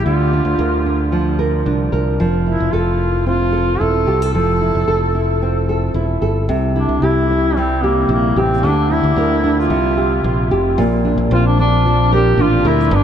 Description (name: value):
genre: acoustic pop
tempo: 112 BPM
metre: 4/4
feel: straight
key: unclear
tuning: A4 = 439 Hz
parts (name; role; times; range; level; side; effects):
- warm duduk; melody; 0.0-13.0 s; Bb3 to A4; -19 LUFS; equal; ping-pong delay
- nylon-string guitar; accompaniment; 0.0-13.0 s; G2 to Bb4; -18 LUFS; right 1 dB; none
- fingered electric bass; bass; 0.0-13.0 s; E1 to D2; -18 LUFS; equal; none
room: moderate huge ambient reverb, RT60 7.3 s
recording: dreamy mix soaked in reverb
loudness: -13 LUFS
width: side -9 dB against mid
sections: 0.0-10.8 A section; 10.8-13.0 B section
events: none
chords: 0.1 Bb/D; 2.2 Fmaj7; 6.5 C7; 8.6 Bb/D; 9.7 C7sus4; 10.8 Bbadd9